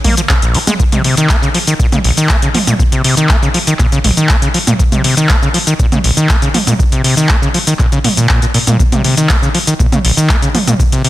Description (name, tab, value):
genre	acid house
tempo	120 BPM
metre	4/4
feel	straight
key	unclear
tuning	A4 = 440 Hz
part	overdriven acid bass	riff	0.0-11.1 s	Bb1 to Bb3	-13 LUFS	equal	distortion, sidechain pumping, ping-pong delay
part	electro analog drum machine	drums	0.0-11.1 s	handclaps, hi-hat, shaker, toms	-15 LUFS	equal	none
part	electronic kick drum	drums	0.0-10.9 s	none	-13 LUFS	equal	none
room	light reverb, digital ambience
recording	dense, heavily limited modern master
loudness	-9 LUFS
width	side -15 dB against mid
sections	0.0-11.1 A section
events	none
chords	none